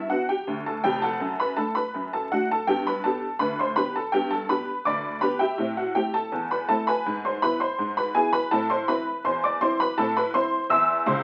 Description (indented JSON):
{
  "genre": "ragtime piano",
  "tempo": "82 BPM",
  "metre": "2/4",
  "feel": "straight",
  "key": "G major",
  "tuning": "A4 = 439 Hz",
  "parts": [
    { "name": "honky-tonk upright piano", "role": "solo", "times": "0.0-11.2 s", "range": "F1 to E6", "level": "-25 LUFS", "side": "equal", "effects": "none" }
  ],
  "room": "moderate studio reverb, RT60 0.7 s",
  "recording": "very old 78 rpm record, vinyl crackle",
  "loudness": "-25 LUFS",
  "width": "mono",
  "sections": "0.0-11.2 A section",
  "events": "none",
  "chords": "0.0 G; 1.2 D/F#; 2.7 G; 5.6 Am; 7.0 E/G#; 8.5 Am"
}